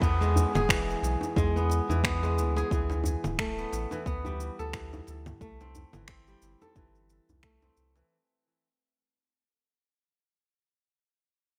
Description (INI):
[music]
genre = organic downtempo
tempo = 89 BPM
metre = 4/4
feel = swing 56% on 16ths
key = unclear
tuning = A4 = 442 Hz
[part]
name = kora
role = arpeggios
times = 0.0-9.4 s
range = E3 to A4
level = -34 LUFS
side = equal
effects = low-pass filter, digital delay
[part]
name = warm sub bass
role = bass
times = 0.0-8.0 s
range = D1 to E2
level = -32 LUFS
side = equal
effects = sidechain pumping
[part]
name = electronic kick drum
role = drums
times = 0.0-7.6 s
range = none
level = -34 LUFS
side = equal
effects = overdrive
[part]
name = electronic shaker, congas and finger snaps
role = drums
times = 0.0-8.1 s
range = none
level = -34 LUFS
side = equal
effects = overdrive
[part]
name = downlifter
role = sound effects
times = 0.0-2.7 s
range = none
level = -48 LUFS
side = equal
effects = none
[part]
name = djembe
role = percussion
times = 0.2-8.1 s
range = none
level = -39 LUFS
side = equal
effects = none
[sound]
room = moderate plate reverb, RT60 1.9 s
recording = bright 1980s-style digital production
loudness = -29 LUFS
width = mono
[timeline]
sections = 0.0-8.1 A section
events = fade-out 0.0-8.1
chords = 0.0 E; 2.7 Gadd9/D; 5.4 C